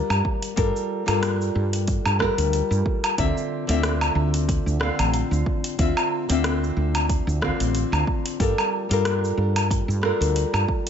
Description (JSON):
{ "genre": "sunset chillout", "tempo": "92 BPM", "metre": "4/4", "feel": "swing 55% on 16ths", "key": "D minor", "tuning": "A4 = 442 Hz", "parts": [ { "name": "nylon-string guitar", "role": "accompaniment", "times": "0.0-10.9 s", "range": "D3 to F5", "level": "-25 LUFS", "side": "left 2 dB", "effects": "auto-pan, digital delay" }, { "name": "woody fretless electric bass", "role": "bass", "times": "0.1-10.6 s", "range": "A1 to G2", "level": "-23 LUFS", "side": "equal", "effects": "none" }, { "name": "deep house drum kit", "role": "drums", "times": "0.1-10.9 s", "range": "cabasa, hi-hat, rim click, woodblock", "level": "-27 LUFS", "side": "equal", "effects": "overdrive" }, { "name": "electronic kick drum", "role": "drums", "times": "0.2-10.8 s", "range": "none", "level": "-26 LUFS", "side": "equal", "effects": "overdrive" } ], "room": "light reverb, digital ambience", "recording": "nothing above 7.8 kHz", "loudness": "-20 LUFS", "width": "side -8 dB against mid", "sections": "0.0-10.9 A section", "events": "none", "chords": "0.0 Gm9; 3.2 Dm9; 8.4 Gm9" }